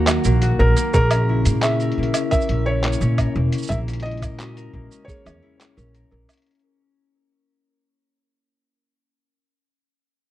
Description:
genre	folktronica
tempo	87 BPM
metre	4/4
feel	straight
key	unclear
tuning	A4 = 440 Hz
part	felt-muted upright piano	melody	0.0-6.1 s	F#4 to E5	-24 LUFS	equal	tape echo
part	small celesta	second line	0.0-6.5 s	F#4 to A#4	-32 LUFS	right 4 dB	tape echo
part	warbly tape-like pad	sustained chords	0.0-6.4 s	C#3 to F#4	-28 LUFS	equal	chorus, built-in reverb
part	concert harp	arpeggios	0.0-9.3 s	F#3 to A#4	-29 LUFS	left 5 dB	tape echo
part	upright bass	bass	0.0-6.2 s	E1 to A#2	-20 LUFS	equal	none
part	lo-fi sampler-style drum kit	drums	0.1-6.6 s	cabasa, handclaps, hi-hat, woodblock	-25 LUFS	right 2 dB	none
part	electronic kick drum	drums	0.9-5.2 s	none	-23 LUFS	equal	none
room	little or no reverb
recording	dry, close 1970s-style studio recording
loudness	-17 LUFS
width	side -14 dB against mid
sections	0.0-6.5 A section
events	fade-out 0.0-6.5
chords	0.0 D#m; 0.9 A#dim

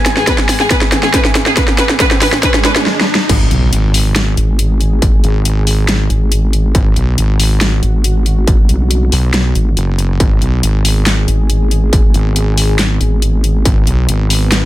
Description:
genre	heavy wobble dubstep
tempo	139 BPM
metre	4/4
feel	half-time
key	G# minor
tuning	A4 = 440 Hz
part	lush unison pad	sustained chords	0.0-14.7 s	G#2 to G#5	-24 LUFS	equal	chorus, sidechain pumping
part	riser, swell and impact	sound effects	0.0-5.0 s	none	-21 LUFS	right 1 dB	none
part	dubstep drum kit	drums	0.1-14.6 s	crash cymbal, handclaps, hi-hat, snare drum	-15 LUFS	equal	none
part	warm symphonic violin section	melody	0.2-2.7 s	G#4 to B4	-17 LUFS	equal	dub echo
part	electronic kick drum	drums	0.3-13.7 s	none	-14 LUFS	equal	distortion
part	wobble bass	bass	3.3-14.7 s	F#1 to B1	-12 LUFS	equal	chorus, overdrive
part	vowel-sweep wobble bass	bass	4.4-13.6 s	G#1 to B1	-12 LUFS	equal	chorus, overdrive
room	digital ambience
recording	none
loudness	-10 LUFS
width	side -15 dB against mid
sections	0.0-3.3 A section; 3.3-14.7 B section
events	build-up 0.0-3.3; drum fill 0.0-2.9, 2.9-3.3; riser 0.0-3.3; swell 2.4-3.3; drop 3.3-14.7; impact 3.3-5.0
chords	0.0 G#m

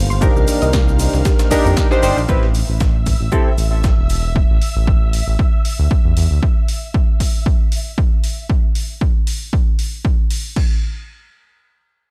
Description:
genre	deep house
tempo	116 BPM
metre	4/4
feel	swing 55% on 16ths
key	unclear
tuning	A4 = 440 Hz
part	warm analog pad	sustained chords	0.0-2.2 s	Eb3 to C5	-33 LUFS	equal	none
part	smooth synth bass	bass	0.0-6.4 s	E1 to F2	-20 LUFS	equal	sidechain pumping
part	soft string machine	texture	0.0-8.5 s	E5 to F6	-34 LUFS	equal	phaser, ensemble chorus, sidechain pumping
part	soft round pluck	arpeggios	0.1-2.2 s	G4 to C6	-30 LUFS	equal	chorus, sidechain pumping, analog delay
part	punchy analog drum machine	drums	0.1-10.7 s	crash cymbal, hi-hat, ride cymbal, shaker, snare drum	-30 LUFS	equal	overdrive
part	warm analog keys	stabs	0.2-3.5 s	C4 to C5	-21 LUFS	equal	chorus, sidechain pumping, low-pass filter, analog delay
part	breakbeat sampler-style drum kit	drums	0.2-4.2 s	hi-hat, shaker, snare drum	-33 LUFS	equal	sidechain pumping on perc, high-pass filter on perc, high-pass filter on snare, sidechain pumping on hats, high-pass filter on hats
part	electronic kick drum	drums	0.2-10.7 s	none	-18 LUFS	equal	overdrive
room	little or no reverb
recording	dry, gritty hardware recording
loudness	-16 LUFS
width	mono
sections	0.0-2.3 A section; 2.3-10.6 B section; 10.6-12.1 C section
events	drop 0.0-2.3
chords	0.0 Cm7; 2.3 A5; 10.6 N.C.

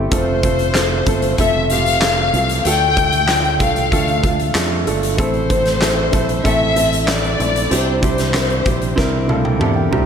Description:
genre	piano-driven pop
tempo	95 BPM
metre	4/4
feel	straight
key	F major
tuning	A4 = 439 Hz
part	clear upright piano	accompaniment	0.0-10.1 s	A2 to Bb5	-20 LUFS	right 3 dB	slapback echo
part	fingered electric bass	bass	0.0-10.1 s	F1 to F2	-21 LUFS	equal	none
part	warm studio violin section	melody	0.1-9.3 s	C5 to G5	-19 LUFS	left 3 dB	slapback echo
part	huge arena drum kit	drums	0.1-10.1 s	handclaps, hi-hat, kick drum, snare drum, toms	-20 LUFS	equal	none
room	moderate lush hall reverb, RT60 2.6 s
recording	big arena sound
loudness	-14 LUFS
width	side -7 dB against mid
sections	0.0-10.1 A section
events	drum fill 9.0-10.1; upright piano fill 9.0-10.1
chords	0.1 F; 2.6 Dm; 5.2 Am; 7.7 Cadd9

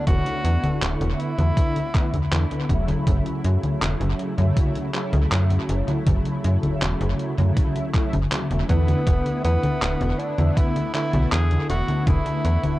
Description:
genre	vaporwave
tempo	80 BPM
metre	4/4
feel	straight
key	F# minor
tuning	A4 = 440 Hz
part	breathy tenor saxophone	melody	0.0-2.3, 8.7-12.8 s	B3 to G#4	-29 LUFS	equal	vintage 12-bit sampler grit, tape echo
part	mellow synth brass	accompaniment	0.0-12.8 s	C#3 to E4	-27 LUFS	right 1 dB	ensemble chorus, cassette tape, tape echo
part	slap-like FM bass	bass	0.1-12.8 s	D1 to F#2	-21 LUFS	equal	none
part	detuned 8-bit digital drum machine	drums	0.1-12.8 s	congas, handclaps, hi-hat	-26 LUFS	left 1 dB	overdrive, vintage 12-bit sampler grit, tape echo
part	electronic kick drum	drums	0.1-12.2 s	none	-21 LUFS	equal	overdrive, vintage 12-bit sampler grit
room	digital ambience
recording	echo-heavy mix, cassette tape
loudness	-19 LUFS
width	side -17 dB against mid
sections	0.0-12.8 A section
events	none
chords	0.0 E7sus4; 3.1 F#m7; 9.1 E7sus4

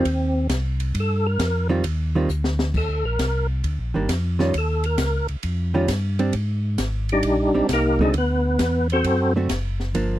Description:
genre	soul jazz organ trio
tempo	133 BPM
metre	4/4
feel	swing 67% on 8ths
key	Eb major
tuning	A4 = 440 Hz
part	percussive tonewheel organ	melody	0.0-9.3 s	G3 to C5	-21 LUFS	equal	slow rotary speaker, chorus vibrato
part	hollow-body jazz guitar	accompaniment	0.0-10.2 s	D3 to Gb4	-22 LUFS	right 3 dB	none
part	mellow tonewheel organ	bass	0.0-10.2 s	F#1 to Ab2	-23 LUFS	equal	chorus vibrato, slow rotary speaker
part	open jazz drum kit	drums	0.0-10.1 s	crash cymbal, hi-hat, kick drum, ride cymbal, snare drum	-29 LUFS	left 1 dB	none
room	little or no reverb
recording	dry, close 1970s-style studio recording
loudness	-20 LUFS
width	side -14 dB against mid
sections	0.0-2.7 A section; 2.7-10.2 A section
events	tonewheel organ solo 0.0-10.2; drum fill 2.3-2.7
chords	0.0 Eb69; 2.7 Ebmaj7; 4.5 Eb9; 6.3 Abmaj9#11; 8.1 D7

